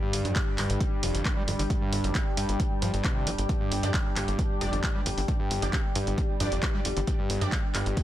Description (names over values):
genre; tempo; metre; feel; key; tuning
driving peak-time techno; 134 BPM; 4/4; straight; unclear; A4 = 440 Hz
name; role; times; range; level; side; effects
screaming distorted acid line; riff; 0.0-8.0 s; F2 to Bb3; -34 LUFS; equal; distortion, chorus, sidechain pumping, tape echo
analog drone; drone; 0.0-8.0 s; G2 to G3; -36 LUFS; equal; chorus, sidechain pumping
deep dark ambient pad; texture; 0.0-8.0 s; D4 to G5; -35 LUFS; left 1 dB; chorus, built-in reverb, sidechain pumping
tight sequencer bass; bass; 0.1-7.9 s; F1 to G2; -31 LUFS; equal; tube saturation, sidechain pumping
punchy analog drum machine; drums; 0.1-8.0 s; handclaps, hi-hat; -33 LUFS; right 1 dB; sidechain pumping on hats, sidechain pumping on cymbals
electronic kick drum; drums; 0.4-8.0 s; none; -29 LUFS; equal; none
rave stab; stabs; 3.8-7.5 s; D4 to D5; -37 LUFS; right 3 dB; chorus, built-in reverb, phaser, sidechain pumping, tape echo
room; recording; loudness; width
little or no reverb; dense, heavily limited modern master; -25 LUFS; side -13 dB against mid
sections
0.0-8.0 A section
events
none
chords
0.0 G5